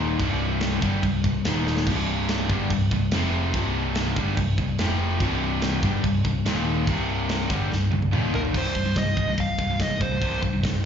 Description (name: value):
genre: heavy metal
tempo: 144 BPM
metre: 4/4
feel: straight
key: C minor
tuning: A4 = 440 Hz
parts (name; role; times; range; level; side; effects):
- biting overdriven guitar; riff; 0.0-8.5 s; C2 to G3; -29 LUFS; left 1 dB; slapback echo
- distorted electric guitar; riff; 0.0-10.8 s; C2 to G3; -29 LUFS; left 8 dB; distortion, slapback echo
- scooped high-gain guitar; riff; 0.0-10.8 s; C2 to G3; -30 LUFS; right 8 dB; distortion, slapback echo
- overdriven picked electric bass; bass; 0.0-10.8 s; C1 to G1; -28 LUFS; equal; none
- tight metal drum kit; drums; 0.2-10.7 s; crash cymbal, hi-hat, kick drum, snare drum, toms; -28 LUFS; equal; none
- dark smooth lead guitar; melody; 8.4-10.4 s; Bb4 to F5; -28 LUFS; right 1 dB; overdrive, slapback echo, tape echo
room: little or no reverb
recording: live gig heard through the venue's PA, club reverb, nothing above 7.5 kHz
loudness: -21 LUFS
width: side -8 dB against mid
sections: 0.0-8.5 A section; 8.5-10.9 B section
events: drum fill 1.7, 7.7-8.5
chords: 0.2 C5; 1.5 Eb5; 1.9 C5; 3.1 F5; 3.5 C5; 4.8 F5; 5.2 C5; 6.5 Eb5; 6.9 C5; 8.1 Eb5; 8.5 Cm